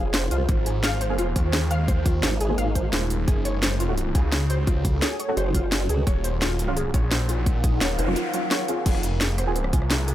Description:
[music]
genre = dark technical drum and bass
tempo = 172 BPM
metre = 4/4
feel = straight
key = unclear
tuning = A4 = 443 Hz
[part]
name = deep dark ambient pad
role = sustained chords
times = 0.0-10.1 s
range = Ab3 to Gb5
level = -32 LUFS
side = right 1 dB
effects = chorus, built-in reverb, sidechain pumping
[part]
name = formant-sweep wobble bass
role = bass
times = 0.0-2.9, 5.4-8.2 s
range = F1 to Db2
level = -24 LUFS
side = equal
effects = chorus
[part]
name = warbly dusty pluck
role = arpeggios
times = 0.1-10.1 s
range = F4 to F5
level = -31 LUFS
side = left 2 dB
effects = ensemble chorus, cassette tape, sidechain pumping, digital delay
[part]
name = drum and bass drum kit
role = drums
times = 0.1-10.1 s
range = crash cymbal, hi-hat, rim click, snare drum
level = -26 LUFS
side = equal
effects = none
[part]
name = snarling distorted saw bass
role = bass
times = 0.5-10.1 s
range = Eb1 to Eb2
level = -25 LUFS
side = equal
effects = distortion
[part]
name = electronic kick drum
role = drums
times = 0.5-9.8 s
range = none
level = -22 LUFS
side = equal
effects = none
[part]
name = orchestra-hit-like synth stab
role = stabs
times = 1.1-9.5 s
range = Gb3 to Ab4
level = -31 LUFS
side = right 1 dB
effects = built-in reverb, digital delay
[part]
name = noise sweep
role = sound effects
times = 7.7-8.9 s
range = none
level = -36 LUFS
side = equal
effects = none
[sound]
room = light reverb, digital ambience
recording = none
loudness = -21 LUFS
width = side -13 dB against mid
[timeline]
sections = 0.0-10.1 A section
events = noise sweep 7.7-8.9; break 8.2-8.9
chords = 0.5 Abadd9; 3.3 Gbm; 6.1 Ebm7; 8.9 Fm

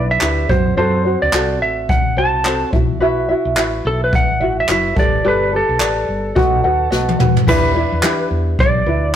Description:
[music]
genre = acoustic pop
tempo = 108 BPM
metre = 4/4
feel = swing 60% on 16ths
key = E minor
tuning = A4 = 440 Hz
[part]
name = clean lap steel guitar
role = melody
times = 0.0-9.1 s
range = A4 to A5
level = -19 LUFS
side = right 1 dB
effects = none
[part]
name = tenor ukulele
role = accompaniment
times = 0.0-9.1 s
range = C4 to F#5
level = -18 LUFS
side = left 1 dB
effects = none
[part]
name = woody fretless electric bass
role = bass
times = 0.0-9.2 s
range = F#1 to E3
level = -21 LUFS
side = equal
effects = none
[part]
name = jazz brush drum kit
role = drums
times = 0.2-8.7 s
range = crash cymbal, handclaps, kick drum, snare drum, toms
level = -18 LUFS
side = equal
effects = none
[sound]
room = moderate stone room reverb, RT60 1.1 s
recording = rough rehearsal-room recording, warm saturation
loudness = -13 LUFS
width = side -10 dB against mid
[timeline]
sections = 0.0-7.5 A section; 7.5-9.2 B section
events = drum fill 6.9-7.5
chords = 0.5 F#dim; 2.7 Bsus4; 5.0 Gadd9; 6.4 B; 7.5 Em7

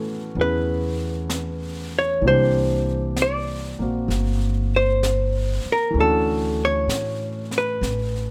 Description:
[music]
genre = jazz ballad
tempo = 64 BPM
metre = 4/4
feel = swing 69% on 8ths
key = unclear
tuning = A4 = 438 Hz
[part]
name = archtop guitar, miked and amplified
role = melody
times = 0.0-8.3 s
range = A4 to D5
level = -25 LUFS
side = equal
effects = plate reverb
[part]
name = warm baby grand piano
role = accompaniment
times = 0.0-8.3 s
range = E3 to G#4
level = -30 LUFS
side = equal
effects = none
[part]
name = upright bass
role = bass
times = 0.0-8.3 s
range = G1 to A2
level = -27 LUFS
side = equal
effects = none
[part]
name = jazz brush drum kit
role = drums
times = 0.4-8.3 s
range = brushed snare drum, hi-hat, snare drum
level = -36 LUFS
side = equal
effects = none
[sound]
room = light reverb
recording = none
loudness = -22 LUFS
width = mono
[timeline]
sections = 0.0-8.3 A section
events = none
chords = 0.0 A69; 2.2 C9; 6.0 Dmaj9

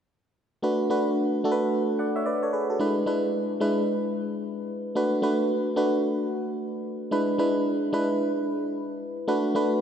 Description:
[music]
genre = R&B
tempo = 111 BPM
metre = 4/4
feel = swing 63% on 16ths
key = B dorian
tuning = A4 = 441 Hz
[part]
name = FM electric piano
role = accompaniment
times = 0.6-9.8 s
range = G#3 to F#5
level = -24 LUFS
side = equal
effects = chorus
[sound]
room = wet plate reverb, RT60 2.9 s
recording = dreamy mix soaked in reverb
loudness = -24 LUFS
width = side -8 dB against mid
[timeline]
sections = 0.6-9.3 A section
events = none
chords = 0.6 Bm7; 2.8 E7; 5.0 Bm7; 7.1 E7; 9.3 Bm7

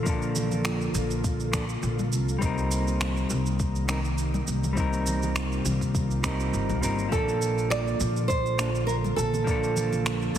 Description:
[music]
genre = sunset chillout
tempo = 102 BPM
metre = 4/4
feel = swing 54% on 16ths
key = Bb major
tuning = A4 = 440 Hz
[part]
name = clean electric guitar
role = accompaniment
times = 0.0-10.4 s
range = F3 to Bb4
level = -30 LUFS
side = moving between left 4 dB and right 2 dB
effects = auto-pan, tape echo
[part]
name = ethereal airy pad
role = sustained chords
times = 0.0-10.4 s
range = C3 to A4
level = -33 LUFS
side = right 1 dB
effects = ensemble chorus, built-in reverb
[part]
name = upright bass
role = bass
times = 0.0-10.4 s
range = G1 to C2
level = -28 LUFS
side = equal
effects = none
[part]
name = electronic kick drum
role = drums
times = 0.1-9.6 s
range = none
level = -30 LUFS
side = equal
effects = none
[part]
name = electronic shaker and finger snaps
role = drums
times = 0.1-10.4 s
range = none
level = -34 LUFS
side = right 1 dB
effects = none
[part]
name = congas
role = percussion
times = 0.4-10.4 s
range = none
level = -37 LUFS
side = left 2 dB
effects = none
[part]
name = nylon-string guitar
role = melody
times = 7.1-10.3 s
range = A4 to D5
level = -29 LUFS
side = right 3 dB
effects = ping-pong delay
[sound]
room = moderate concert hall reverb, RT60 2.5 s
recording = heavily compressed radio sound, multiband compression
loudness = -24 LUFS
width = side -10 dB against mid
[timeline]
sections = 0.0-10.4 A section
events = none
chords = 0.0 Bbmaj7; 2.1 Cm7; 7.1 Bbmaj7

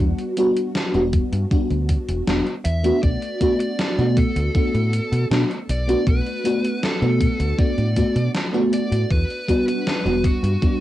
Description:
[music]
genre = vaporwave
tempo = 79 BPM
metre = 4/4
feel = straight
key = E minor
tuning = A4 = 440 Hz
[part]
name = FM electric piano with soft pad layer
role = accompaniment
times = 0.0-10.8 s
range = G3 to F#4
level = -21 LUFS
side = equal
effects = ensemble chorus, analog delay
[part]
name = deep dub fingered electric bass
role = bass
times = 0.0-10.7 s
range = E1 to B2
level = -21 LUFS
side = equal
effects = tube saturation
[part]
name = gated 80s digital drum machine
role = drums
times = 0.2-10.8 s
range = hi-hat, snare drum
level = -27 LUFS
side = equal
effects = gated reverb, gated reverb snare, overdrive, cassette tape
[part]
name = electronic kick drum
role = drums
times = 1.1-10.8 s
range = none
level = -20 LUFS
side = equal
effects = overdrive, cassette tape
[part]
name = dark smooth lead guitar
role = melody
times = 2.6-10.8 s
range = F#4 to E5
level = -29 LUFS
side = equal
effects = overdrive, cassette tape, analog delay
[sound]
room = light reverb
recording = home recording on cassette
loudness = -18 LUFS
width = side -14 dB against mid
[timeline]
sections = 0.0-10.8 A section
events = none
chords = 0.0 Em9; 3.0 Bm7; 9.1 Em9

